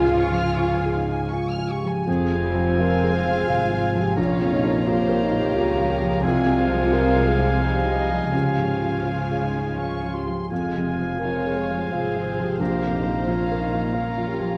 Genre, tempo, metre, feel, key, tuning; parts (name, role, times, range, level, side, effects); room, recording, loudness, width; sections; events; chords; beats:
cinematic; 85 BPM; 3/4; uneven beats, rubato; F minor; A4 = 440 Hz
muted symphonic violin section; melody; 0.0-14.6 s; F5 to Db6; -38 LUFS; equal
dark clarinet; second line; 0.0-14.6 s; C5 to F5; -33 LUFS; equal
muted studio violin section; second line; 0.0-14.6 s; Ab4 to F6; -35 LUFS; equal
muted symphonic viola section; accompaniment; 0.0-14.6 s; F3 to Ab4; -32 LUFS; equal
warm grand piano; accompaniment; 0.0-14.6 s; Bb1 to F5; -29 LUFS; equal
mellow French horn section; sustained chords; 0.0-1.3 s; F4; -32 LUFS; equal
concert harp; arpeggios; 0.0-14.6 s; F2 to Ab5; -33 LUFS; equal
muted symphonic cello section; bass; 0.0-14.6 s; F2 to F3; -32 LUFS; equal
muted symphonic double bass section; bass; 0.0-14.6 s; F1 to Db2; -32 LUFS; equal
mellow French horn; melody; 0.9-14.6 s; Eb4 to Bb4; -31 LUFS; equal
clear oboe; second line; 2.1-14.6 s; Ab5 to Bb5; -34 LUFS; equal
moderate scoring stage reverb, RT60 1.7 s; -22 LUFS; mono
0.0-2.1 A section; 2.1-14.6 A section
0.0 Db; 2.1 Fm; 4.2 Bbm; 6.2 Fm/C; 8.3 Db; 10.5 Fm; 12.6 Bbm
0.56 1.32 | 2.07 2.78 3.48 | 4.17 4.87 5.56 | 6.24 6.92 7.62 | 8.33 9.06 9.78 | 10.51 11.22 11.93 | 12.60 13.27 13.94